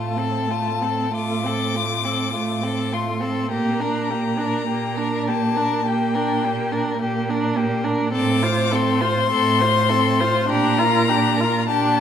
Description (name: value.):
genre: classical, slow romantic movement for string quartet.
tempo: 51 BPM.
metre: 4/4.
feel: rubato.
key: F major.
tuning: A4 = 440 Hz.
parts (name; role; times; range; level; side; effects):
rich violin; melody; 0.0-12.0 s; G5 to D6; -23 LUFS; left 8 dB; none.
rich violin; second line; 0.0-12.0 s; F4 to C5; -26 LUFS; left 2 dB; none.
rich viola; accompaniment; 0.0-12.0 s; A3 to F4; -23 LUFS; right 2 dB; none.
rich cello; bass; 0.0-12.0 s; A2 to Bb2; -25 LUFS; right 5 dB; none.
room: wet recital hall reverb, RT60 1.5 s.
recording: none.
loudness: -18 LUFS.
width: side -8 dB against mid.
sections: 0.0-12.0 A section.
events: none.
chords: 0.0 F/A; 3.5 Gm/Bb; 8.2 F/A; 10.5 Gm7/Bb.